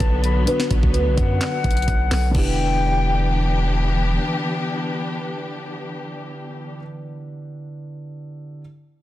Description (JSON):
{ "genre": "hip hop, trap", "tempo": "128 BPM", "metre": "4/4", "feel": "half-time", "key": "E minor", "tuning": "A4 = 440 Hz", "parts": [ { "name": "kalimba", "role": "melody", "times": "0.0-3.7 s", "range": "G4 to B4", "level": "-29 LUFS", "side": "equal", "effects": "digital delay" }, { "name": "silver concert flute", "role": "second line", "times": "0.0-3.7 s", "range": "F#5 to B5", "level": "-27 LUFS", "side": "left 5 dB", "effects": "digital delay" }, { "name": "dark concert grand piano", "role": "accompaniment", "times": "0.0-8.6 s", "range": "D3 to B4", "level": "-29 LUFS", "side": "equal", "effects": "none" }, { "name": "dark symphonic string section", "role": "sustained chords", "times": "0.0-6.8 s", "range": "D3 to G4", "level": "-27 LUFS", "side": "left 2 dB", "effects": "none" }, { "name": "long sustained 808-style bass", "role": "bass", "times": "0.0-4.2 s", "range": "E1 to F#2", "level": "-21 LUFS", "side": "equal", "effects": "none" }, { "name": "trap drum kit", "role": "drums", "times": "0.0-2.5 s", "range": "crash cymbal, handclaps, hi-hat, kick drum, snare drum", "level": "-22 LUFS", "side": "equal", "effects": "none" } ], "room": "light reverb, studio ambience", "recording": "dense, heavily limited modern master", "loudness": "-18 LUFS", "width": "side -14 dB against mid", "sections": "0.0-2.3 A section; 2.3-6.1 B section", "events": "none", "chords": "0.0 Bm; 2.3 Em7", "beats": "0.00 | 0.47 0.94 1.41 1.88 | 2.35 2.82 3.28 3.75 | 4.22 4.69 5.16 5.63" }